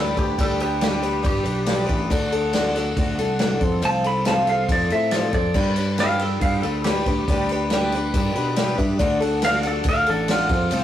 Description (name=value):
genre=folk rock and heartland rock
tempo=139 BPM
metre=4/4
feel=straight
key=unclear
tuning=A4 = 440 Hz
part: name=clean lap steel guitar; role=melody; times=0.0-10.8 s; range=F4 to B5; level=-24 LUFS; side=right 1 dB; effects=none
part: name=picked twelve-string acoustic guitar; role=accompaniment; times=0.0-10.8 s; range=D3 to B4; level=-23 LUFS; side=left 1 dB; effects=none
part: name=fingered electric bass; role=bass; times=0.0-10.8 s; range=G1 to B2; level=-26 LUFS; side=equal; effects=none
part: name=unplugged drum kit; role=drums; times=0.2-10.8 s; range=crash cymbal, kick drum, ride cymbal, snare drum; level=-24 LUFS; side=equal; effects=none
part: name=dark concert grand piano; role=accompaniment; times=5.5-10.8 s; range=C4 to E5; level=-35 LUFS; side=right 1 dB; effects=none
room=moderate studio reverb, RT60 0.6 s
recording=rough rehearsal-room recording, warm saturation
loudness=-19 LUFS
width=side -11 dB against mid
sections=0.0-10.8 A section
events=electric slide guitar solo 0.0-10.8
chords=0.0 G; 2.1 D; 3.6 F; 5.6 G; 9.0 D